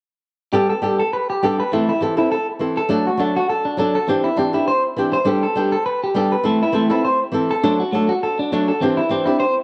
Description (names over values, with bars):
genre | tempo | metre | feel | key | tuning
highlife | 102 BPM | 4/4 | swing 55% on 16ths | G major | A4 = 440 Hz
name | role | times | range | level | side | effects
flamenco guitar | accompaniment | 0.5-9.4 s | E3 to A4 | -22 LUFS | equal | cassette tape
electric guitar at the edge of break-up | arpeggios | 0.5-9.5 s | A3 to C5 | -21 LUFS | equal | cassette tape, tape echo
room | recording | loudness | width
moderate spring reverb, RT60 2.1 s | home recording on cassette, nothing above 10.3 kHz | -19 LUFS | mono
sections
0.5-9.6 A section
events
none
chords
0.5 Gadd9; 1.7 Am; 2.9 D; 4.1 Cadd9; 5.3 Gadd9; 6.4 Am; 7.6 D; 8.8 Cadd9